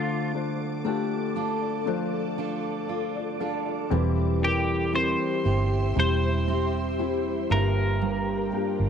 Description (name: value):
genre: pop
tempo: 58 BPM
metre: 4/4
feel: straight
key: unclear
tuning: A4 = 441 Hz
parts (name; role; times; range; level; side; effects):
- twelve-string electric guitar; melody; 0.0-8.9 s; F4 to C5; -29 LUFS; right 1 dB; none
- felt-muted upright piano; accompaniment; 0.0-8.9 s; G2 to F5; -29 LUFS; left 9 dB; none
- ethereal airy pad; sustained chords; 0.0-8.9 s; G4 to D6; -34 LUFS; left 1 dB; ensemble chorus, built-in reverb, phaser
- fingerpicked steel-string acoustic guitar; arpeggios; 0.0-8.9 s; G2 to A4; -31 LUFS; right 10 dB; none
- vintage muted fingered electric bass; bass; 3.9-8.9 s; E1 to G1; -26 LUFS; right 1 dB; none
room: moderate spring reverb, RT60 2.2 s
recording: 1960s-style stereo with parts hard left and right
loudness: -24 LUFS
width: side -7 dB against mid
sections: 0.0-8.9 A section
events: none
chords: 0.0 Dm; 3.9 C/E; 7.5 Gm7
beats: 0.85 1.87 2.89 | 3.91 4.93 5.97 7.00 | 8.02